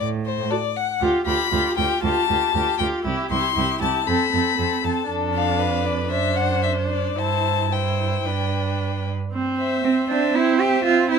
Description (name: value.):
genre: quick classical-period movement for string quartet.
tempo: 118 BPM.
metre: 4/4.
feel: straight.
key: C major.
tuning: A4 = 440 Hz.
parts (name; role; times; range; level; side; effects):
rich violin; melody; 0.0-11.2 s; C5 to C6; -24 LUFS; left 11 dB; none.
rich cello; bass; 0.0-11.2 s; C2 to G4; -24 LUFS; right 5 dB; none.
rich violin; second line; 0.5-11.2 s; G4 to C5; -27 LUFS; left 3 dB; none.
rich viola; accompaniment; 0.5-11.2 s; C4 to F#4; -25 LUFS; right 3 dB; none.
room: little or no reverb.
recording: close, detailed microphones.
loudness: -19 LUFS.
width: side -6 dB against mid.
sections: 0.0-9.3 A section; 9.3-11.2 B section.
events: none.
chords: 0.0 D; 1.0 G7/D; 3.1 C; 4.1 F; 5.1 Dm/F; 6.1 D7/F#; 7.2 C/G; 8.3 G; 9.3 C.